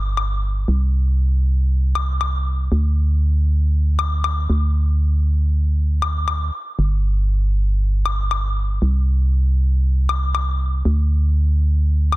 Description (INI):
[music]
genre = deep house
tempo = 118 BPM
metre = 4/4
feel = swing 55% on 16ths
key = unclear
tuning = A4 = 440 Hz
[part]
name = organ-like FM bass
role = bass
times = 0.0-12.2 s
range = G1 to D2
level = -17 LUFS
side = equal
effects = none
[part]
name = woodblock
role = drums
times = 0.2-12.2 s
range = none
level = -25 LUFS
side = left 6 dB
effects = none
[sound]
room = digital ambience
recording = dense, heavily limited modern master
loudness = -17 LUFS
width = side -19 dB against mid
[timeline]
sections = 0.0-12.2 A section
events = none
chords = none